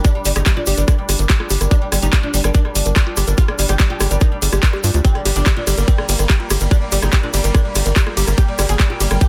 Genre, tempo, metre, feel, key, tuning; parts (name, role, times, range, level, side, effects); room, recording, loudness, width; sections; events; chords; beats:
psychedelic trance; 144 BPM; 4/4; straight; G minor; A4 = 438 Hz
oud; melody; 0.0-9.3 s; D3 to Ab4; -28 LUFS; equal; phaser, sidechain pumping, dub echo
bubbling stepped-filter texture; sustained chords; 0.0-9.3 s; G3 to D4; -32 LUFS; equal; chorus, built-in reverb, sidechain pumping
woody wave-folded pluck; riff; 0.0-9.3 s; F4 to Bb4; -29 LUFS; equal; chorus, sidechain pumping, dub echo
drum and bass drum kit; drums; 0.0-9.3 s; handclaps, hi-hat, ride cymbal, rim click; -24 LUFS; equal; overdrive
electronic kick drum; drums; 0.0-9.3 s; -16 LUFS; equal
tube shaker; percussion; 0.0-9.3 s; -29 LUFS; equal
tight sequencer bass; bass; 0.3-9.2 s; G1 to G2; -20 LUFS; equal
digital ambience; dense, heavily limited modern master; -16 LUFS; mono
0.0-9.3 A section
0.0 G5
| 0.05 0.46 0.88 1.30 | 1.71 2.13 2.55 2.96 | 3.38 3.80 4.21 4.63 | 5.05 5.46 5.88 6.30 | 6.71 7.13 7.55 7.96 | 8.38 8.80 9.21